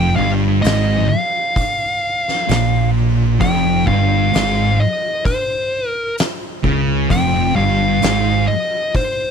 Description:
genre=stoner and doom metal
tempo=65 BPM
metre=4/4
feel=straight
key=unclear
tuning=A4 = 440 Hz
part: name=fuzz lead guitar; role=melody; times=0.0-9.3 s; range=C5 to G5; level=-19 LUFS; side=left 1 dB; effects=distortion, slapback echo
part: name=thick fuzz guitar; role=riff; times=0.0-8.5 s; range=F2 to Db3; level=-19 LUFS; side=left 12 dB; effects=distortion
part: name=thick fuzz guitar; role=riff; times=0.0-8.5 s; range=F2 to Db3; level=-18 LUFS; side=right 10 dB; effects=distortion
part: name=fingered electric bass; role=bass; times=0.0-8.5 s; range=F1 to Db2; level=-21 LUFS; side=equal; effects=overdrive
part: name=oversized low-tuned drum kit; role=drums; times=0.6-9.2 s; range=hi-hat, kick drum, snare drum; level=-23 LUFS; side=equal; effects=none
room=little or no reverb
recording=none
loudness=-14 LUFS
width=side -7 dB against mid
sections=0.0-9.3 A section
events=none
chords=0.0 F5

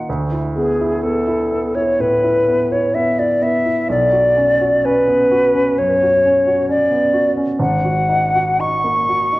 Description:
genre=classical, impressionist duo for flute and grand piano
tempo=63 BPM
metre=4/4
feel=rubato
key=unclear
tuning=A4 = 440 Hz
part: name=hollow concert flute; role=melody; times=0.0-9.4 s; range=G#4 to C#6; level=-15 LUFS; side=left 1 dB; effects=none
part: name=warm grand piano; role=accompaniment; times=0.0-9.4 s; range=G#1 to F#4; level=-20 LUFS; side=right 1 dB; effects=none
room=wet recital hall reverb, RT60 1.4 s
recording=worn, warbling old tape, cassette tape, warbly pitch drift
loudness=-14 LUFS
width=side -19 dB against mid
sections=0.0-9.4 A section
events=none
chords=0.1 Dsus2; 3.9 Bmadd9; 7.6 G#9sus4

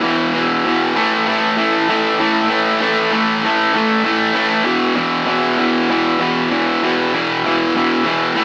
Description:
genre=rock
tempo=65 BPM (dotted quarters)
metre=6/8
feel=straight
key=unclear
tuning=A4 = 441 Hz
part: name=cranked stack guitar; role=solo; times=0.0-8.4 s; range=E2 to A3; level=-13 LUFS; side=equal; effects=overdrive, digital delay
room=moderate plate reverb, RT60 2.6 s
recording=small speaker sound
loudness=-13 LUFS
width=side -29 dB against mid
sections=0.0-8.4 A section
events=none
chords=0.0 E5; 1.0 A5; 4.7 E5

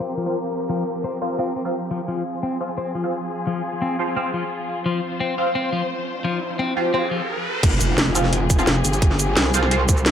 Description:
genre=dark technical drum and bass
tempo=173 BPM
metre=4/4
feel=straight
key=F minor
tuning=A4 = 439 Hz
part: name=muted studio string section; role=sustained chords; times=0.0-10.1 s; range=F3 to C5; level=-27 LUFS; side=left 1 dB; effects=sidechain pumping
part: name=twelve-string electric guitar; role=arpeggios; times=0.0-7.2 s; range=F3 to C4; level=-26 LUFS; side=left 3 dB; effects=vintage 12-bit sampler grit, sidechain pumping, low-pass filter, tape echo
part: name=band-passed chord stab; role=stabs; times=0.3-9.8 s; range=F3 to F4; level=-26 LUFS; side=right 1 dB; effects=phaser, analog chorus, tape echo
part: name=riser and impact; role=sound effects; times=6.0-9.0 s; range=none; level=-27 LUFS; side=right 1 dB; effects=none
part: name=metallic wobble bass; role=bass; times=7.6-10.1 s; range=F1 to C2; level=-21 LUFS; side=equal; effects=chorus, overdrive
part: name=drum and bass drum kit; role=drums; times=7.6-10.1 s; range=crash cymbal, hi-hat, shaker, snare drum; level=-21 LUFS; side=equal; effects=none
part: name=electronic kick drum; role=drums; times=7.6-10.0 s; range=none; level=-18 LUFS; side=equal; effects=none
part: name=growling FM bass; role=bass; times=8.7-8.8 s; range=F1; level=-22 LUFS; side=equal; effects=none
room=moderate digital room reverb, RT60 1.0 s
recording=low-pass filter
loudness=-20 LUFS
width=side -9 dB against mid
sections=0.0-7.6 A section; 7.6-10.1 B section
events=filter sweep on clean electric guitar 0.0-7.6; filter sweep 0.0-7.6; riser 6.0-7.6; stop 7.3-7.6; drop 7.6-10.1; impact 7.6-9.0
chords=0.0 Fm

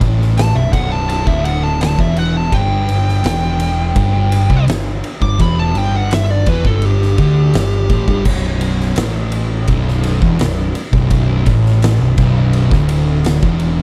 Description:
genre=stoner and doom metal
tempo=84 BPM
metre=4/4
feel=straight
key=B minor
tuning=A4 = 442 Hz
part: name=thick fuzz guitar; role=riff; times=0.0-13.8 s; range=B1 to E3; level=-20 LUFS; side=equal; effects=distortion
part: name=thick fuzz guitar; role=riff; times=0.0-13.8 s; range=B1 to E3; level=-21 LUFS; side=equal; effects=distortion
part: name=fuzz picked electric bass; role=bass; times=0.0-13.8 s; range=B0 to E2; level=-21 LUFS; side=equal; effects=overdrive
part: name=oversized low-tuned drum kit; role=drums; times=0.0-13.8 s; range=crash cymbal, kick drum, ride cymbal, snare drum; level=-21 LUFS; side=equal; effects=none
part: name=fuzz lead guitar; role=melody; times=0.4-8.2 s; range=G4 to D6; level=-24 LUFS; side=equal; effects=distortion, delay
room=small room ambience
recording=dark, warm production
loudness=-15 LUFS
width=mono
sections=0.0-8.3 A section; 8.3-13.8 B section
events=lead electric guitar solo 0.0-8.3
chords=0.0 Bm; 2.5 G5; 8.3 Bm

